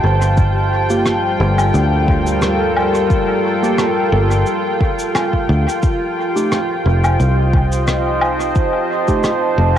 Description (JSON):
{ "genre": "ambient dub", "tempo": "88 BPM", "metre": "4/4", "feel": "swing 55% on 16ths", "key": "unclear", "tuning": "A4 = 438 Hz", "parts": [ { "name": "deep dark ambient pad", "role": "sustained chords", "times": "0.0-9.8 s", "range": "G3 to A5", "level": "-17 LUFS", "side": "equal", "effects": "chorus, built-in reverb" }, { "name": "fingered electric bass", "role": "bass", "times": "0.0-9.8 s", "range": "F1 to D2", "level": "-16 LUFS", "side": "equal", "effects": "none" }, { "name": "wind-like tuned noise texture", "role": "texture", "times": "0.0-9.8 s", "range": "G4 to G5", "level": "-30 LUFS", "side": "left 2 dB", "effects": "none" }, { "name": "cabasa, rim click and woodblock", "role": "drums", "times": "0.2-9.4 s", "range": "none", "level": "-23 LUFS", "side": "left 1 dB", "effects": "cassette tape, dub echo" }, { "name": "electronic kick drum", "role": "drums", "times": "0.4-9.2 s", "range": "none", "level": "-17 LUFS", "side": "equal", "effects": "cassette tape" }, { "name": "mellow tine electric piano", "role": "stabs", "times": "0.9-9.3 s", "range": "A3 to G4", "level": "-22 LUFS", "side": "right 1 dB", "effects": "dub echo" } ], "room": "light reverb, small room ambience", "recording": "home recording on cassette", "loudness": "-13 LUFS", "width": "side -10 dB against mid", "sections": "0.0-9.8 A section", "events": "none", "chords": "0.4 Gm7; 5.8 F9" }